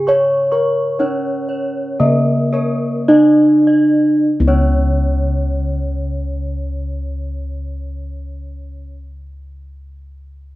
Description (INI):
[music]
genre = gamelan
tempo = 48-68 BPM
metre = 4/4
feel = straight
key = unclear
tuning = A4 = 440 Hz
[part]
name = gamelan-type bronze metallophone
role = melody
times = 0.0-8.9 s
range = A#3+20c to C#5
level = -15 LUFS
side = right 1 dB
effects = none
[part]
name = gamelan-type bronze metallophone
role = arpeggios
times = 0.0-8.9 s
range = A#4+20c to C#6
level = -27 LUFS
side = equal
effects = none
[part]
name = gamelan-type bossed gongs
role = bass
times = 0.0-8.9 s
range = C#2 to C#5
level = -20 LUFS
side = left 1 dB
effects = none
[part]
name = gamelan-type bossed gongs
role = arpeggios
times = 0.1-8.9 s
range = A#4+20c to D5+50c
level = -23 LUFS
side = left 3 dB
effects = none
[sound]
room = little or no reverb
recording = rough home demo mix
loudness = -13 LUFS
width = side -17 dB against mid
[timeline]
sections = 0.0-4.3 A section; 4.3-9.3 B section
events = slowing down 0.0-4.3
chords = none